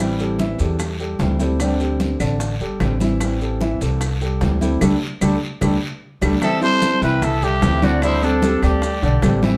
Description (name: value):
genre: latin, Cuban son and guajira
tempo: 149 BPM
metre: 4/4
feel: straight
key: unclear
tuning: A4 = 438 Hz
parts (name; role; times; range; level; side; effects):
- nylon-string guitar; accompaniment; 0.0-9.6 s; D3 to E4; -24 LUFS; equal; none
- warm grand piano; arpeggios; 0.0-9.6 s; D3 to E5; -27 LUFS; equal; none
- upright bass; bass; 0.0-9.6 s; G1 to E2; -24 LUFS; equal; none
- bongos; percussion; 0.2-9.6 s; none; -30 LUFS; equal; none
- congas; percussion; 0.2-9.6 s; none; -27 LUFS; equal; none
- maracas; percussion; 0.2-9.6 s; none; -40 LUFS; equal; none
- guiro; percussion; 0.4-9.6 s; none; -38 LUFS; equal; none
- claves; percussion; 0.8-9.4 s; none; -35 LUFS; equal; none
- growling trumpet; melody; 6.4-9.4 s; D4 to C5; -24 LUFS; equal; none
- bright reedy silver concert flute; second line; 6.4-9.4 s; A4 to A5; -29 LUFS; equal; none
room: wet studio reverb, RT60 0.7 s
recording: band playing live in one room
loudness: -19 LUFS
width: mono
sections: 0.0-6.4 A section; 6.4-9.6 B section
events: band accent 4.8-6.4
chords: 0.0 Am7; 1.6 D7sus4; 3.2 Am7; 4.8 Dsus4; 6.4 Am7; 8.0 D7sus4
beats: 0.39 0.80 1.20 | 1.60 2.00 2.40 2.81 | 3.21 3.61 4.01 4.41 | 4.82 5.22 5.62 6.02 | 6.42 6.82 7.22 7.62 | 8.03 8.43 8.83 9.23